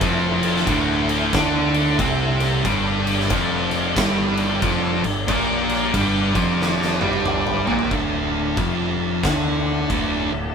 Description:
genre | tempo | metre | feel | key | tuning
stoner and doom metal | 91 BPM | 4/4 | swing 63% on 8ths | D minor | A4 = 442 Hz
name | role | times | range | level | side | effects
bright tonewheel organ | sustained chords | 0.0-10.5 s | D3 to A5 | -31 LUFS | left 1 dB | chorus vibrato, fast rotary speaker
distorted electric guitar | riff | 0.0-7.9 s | D2 to D4 | -24 LUFS | equal | overdrive
thick fuzz guitar | riff | 0.0-10.5 s | D2 to D4 | -25 LUFS | left 6 dB | distortion
thick fuzz guitar | riff | 0.0-10.5 s | D2 to D4 | -24 LUFS | right 6 dB | distortion
growling picked electric bass | bass | 0.0-10.5 s | D1 to D2 | -28 LUFS | equal | overdrive
oversized low-tuned drum kit | drums | 0.0-10.1 s | crash cymbal, kick drum, snare drum, toms | -24 LUFS | left 1 dB | none
room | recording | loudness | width
light reverb | band playing live in one room | -18 LUFS | side -6 dB against mid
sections
0.0-7.9 A section; 7.9-10.5 B section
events
drum fill 6.6-7.9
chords
0.0 Dm; 2.6 G5; 7.9 Dm

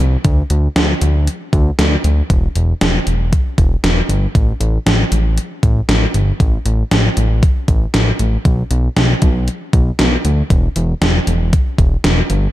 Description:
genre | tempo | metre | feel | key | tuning
synth-pop | 117 BPM | 4/4 | straight | E minor | A4 = 440 Hz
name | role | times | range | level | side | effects
fat analog bass | bass | 0.0-12.5 s | E1 to D2 | -15 LUFS | equal | none
gated 80s digital drum machine | drums | 0.2-12.4 s | hi-hat, kick drum, snare drum | -15 LUFS | equal | gated reverb, gated reverb snare, overdrive
room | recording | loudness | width
light reverb | dark, warm production | -12 LUFS | side -15 dB against mid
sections
0.0-2.3 A section; 2.3-12.5 B section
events
none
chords
none

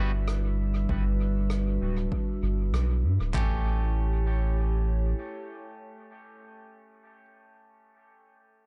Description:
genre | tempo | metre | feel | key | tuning
ambient dub | 98 BPM | 4/4 | swing 54% on 16ths | A mixolydian | A4 = 440 Hz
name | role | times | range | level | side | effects
warbly tape-like pad | sustained chords | 0.0-6.6 s | G3 to C#5 | -37 LUFS | equal | chorus, built-in reverb
electric guitar at the edge of break-up | stabs | 0.0-7.2 s | G3 to G4 | -43 LUFS | equal | low-pass filter, dub echo
soft dub sub bass | bass | 0.0-5.1 s | D1 to G2 | -28 LUFS | equal | tube saturation
drifting glass-harmonics texture | texture | 0.0-3.4 s | E4 to E5 | -52 LUFS | equal | chorus, built-in reverb
rim click | drums | 0.3-2.9 s | none | -47 LUFS | equal | dub echo
deep house drum kit | drums | 0.9-3.5 s | handclaps, kick drum, toms | -34 LUFS | equal | none
room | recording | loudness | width
light reverb | echo-heavy mix, nothing above 10.6 kHz | -27 LUFS | mono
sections
0.0-3.3 A section; 3.3-5.8 B section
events
none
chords
0.0 Gmaj7; 3.3 A7

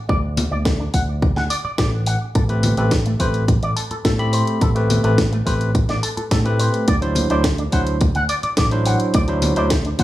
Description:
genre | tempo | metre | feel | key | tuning
nu-disco, nu disco | 106 BPM | 4/4 | straight | unclear | A4 = 440 Hz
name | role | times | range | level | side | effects
electric guitar with an envelope filter | riff | 0.1-10.0 s | A3 to F#5 | -26 LUFS | equal | lush chorus, analog delay
fingered electric bass with an envelope filter | bass | 0.1-10.0 s | A1 to A2 | -21 LUFS | equal | sidechain pumping
electronic kick drum | drums | 0.1-10.0 s | none | -19 LUFS | equal | none
house drum kit | drums | 0.4-10.0 s | hi-hat, snare drum | -25 LUFS | left 1 dB | none
congas | percussion | 0.4-10.0 s | none | -24 LUFS | left 2 dB | none
barky tine electric piano | accompaniment | 2.5-10.0 s | F#3 to B5 | -22 LUFS | equal | overdrive, sidechain pumping, analog delay
room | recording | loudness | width
light reverb, digital ambience | studio reverb | -16 LUFS | side -15 dB against mid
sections
0.0-10.0 A section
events
none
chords
0.0 D5; 2.4 Am9; 6.9 D9

